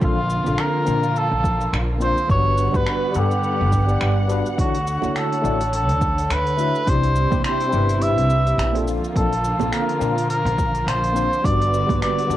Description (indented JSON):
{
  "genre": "sunset chillout",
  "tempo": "105 BPM",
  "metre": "4/4",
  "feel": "swing 57% on 16ths",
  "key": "unclear",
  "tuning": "A4 = 441 Hz",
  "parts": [
    { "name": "trumpet with cup mute", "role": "melody", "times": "0.0-12.4 s", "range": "F4 to E5", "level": "-22 LUFS", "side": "equal", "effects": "cassette tape, analog delay" },
    { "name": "mellow tine electric piano", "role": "accompaniment", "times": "0.0-12.4 s", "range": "G3 to F#5", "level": "-26 LUFS", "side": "moving between left 5 dB and right 1 dB", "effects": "medium stereo tremolo, auto-pan, cassette tape, analog delay" },
    { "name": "dark studio string section", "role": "sustained chords", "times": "0.0-12.4 s", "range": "C3 to F#5", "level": "-27 LUFS", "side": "equal", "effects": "cassette tape" },
    { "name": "upright bass", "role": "bass", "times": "0.0-12.4 s", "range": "G1 to Bb2", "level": "-22 LUFS", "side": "equal", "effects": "none" },
    { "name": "deep house drum kit", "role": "drums", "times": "0.0-12.4 s", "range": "finger snaps, hi-hat, shaker", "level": "-31 LUFS", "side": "equal", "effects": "none" },
    { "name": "electronic kick drum", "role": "drums", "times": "0.0-12.0 s", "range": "none", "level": "-23 LUFS", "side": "equal", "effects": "none" },
    { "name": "congas", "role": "percussion", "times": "5.0-12.0 s", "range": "none", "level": "-30 LUFS", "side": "right 12 dB", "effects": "none" }
  ],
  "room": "light reverb",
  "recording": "home recording on cassette",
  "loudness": "-18 LUFS",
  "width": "side -13 dB against mid",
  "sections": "0.0-12.4 A section",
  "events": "none",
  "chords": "0.0 Bbmaj7; 2.3 Gmaj7; 4.6 Dmaj7; 6.9 Cmaj7; 8.9 Bbmaj7; 11.4 Gmaj7",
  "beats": "| 0.01 0.59 1.16 1.73 | 2.30 2.87 3.44 4.01 | 4.59 5.16 5.73 6.30 | 6.87 7.44 8.01 8.59 | 9.16 9.73 10.30 10.87 | 11.44 12.01"
}